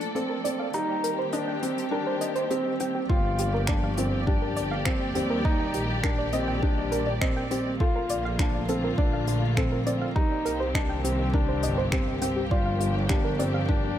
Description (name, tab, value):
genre	piano and strings electronica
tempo	102 BPM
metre	4/4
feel	straight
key	G minor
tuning	A4 = 440 Hz
part	dark studio string section	sustained chords	0.0-14.0 s	D3 to D5	-32 LUFS	left 1 dB	sidechain pumping
part	soft brush drum kit	drums	0.0-13.5 s	finger snaps, hi-hat	-35 LUFS	left 1 dB	none
part	felt-muted upright piano	riff	0.1-14.0 s	C4 to F4	-30 LUFS	left 1 dB	tape echo
part	soft round pluck	arpeggios	0.2-13.7 s	F4 to G5	-32 LUFS	right 2 dB	chorus, cassette tape, sidechain pumping, tape echo
part	bright symphonic double bass section	bass	3.1-13.9 s	G1 to Eb2	-30 LUFS	equal	sidechain pumping
part	electronic kick drum	drums	3.1-13.8 s	none	-26 LUFS	right 1 dB	none
room	moderate lush hall reverb, RT60 1.8 s, small room ambience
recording	none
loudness	-24 LUFS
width	side -11 dB against mid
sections	0.0-3.1 A section; 3.1-14.0 B section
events	build-up 0.0-3.1; filter sweep on synth arpeggio sound 0.0-3.1; drop 3.1-14.0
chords	0.0 Bbmaj7; 0.7 Cm7; 3.1 Gm7; 5.5 Ebmaj7; 7.8 Bbmaj7; 10.2 Cm7; 12.5 Gm7